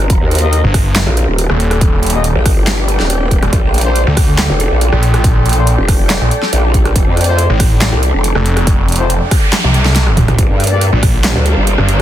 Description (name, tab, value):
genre	heavy wobble dubstep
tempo	140 BPM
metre	4/4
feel	half-time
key	unclear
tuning	A4 = 436 Hz
part	growl bass	bass	0.0-11.8 s	Eb1 to G2	-13 LUFS	equal	chorus, overdrive
part	big-room dance drum kit	drums	0.0-12.0 s	handclaps, hi-hat, rim click, snare drum, toms	-17 LUFS	right 1 dB	none
part	granular cloud pad	texture	0.0-12.0 s	A4 to Bb5	-21 LUFS	equal	built-in reverb, sidechain pumping
part	electronic kick drum	drums	0.1-11.1 s	none	-12 LUFS	equal	none
part	mellow brass ensemble	stabs	0.4-10.9 s	A3 to Eb5	-22 LUFS	left 6 dB	digital delay
part	snarling distorted saw bass	bass	0.6-12.0 s	Eb1 to D2	-12 LUFS	equal	distortion, overdrive
part	noise sweep	sound effects	8.9-10.4 s	none	-22 LUFS	right 2 dB	none
part	rich studio string section	sustained chords	10.4-12.0 s	G3 to D4	-20 LUFS	right 1 dB	sidechain pumping
room	digital ambience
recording	dense, heavily limited modern master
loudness	-10 LUFS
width	side -12 dB against mid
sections	0.0-12.0 A section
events	noise sweep 8.9-10.4; drum fill 9.5-10.4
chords	0.1 Eb; 3.5 Bb; 7.0 F; 10.4 Gm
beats	| 0.10 0.53 0.96 1.39 | 1.81 2.24 2.67 3.10 | 3.53 3.96 4.38 4.81 | 5.24 5.67 6.10 6.53 | 6.96 7.38 7.81 8.24 | 8.67 9.10 9.53 9.96 | 10.38 10.81 11.24 11.67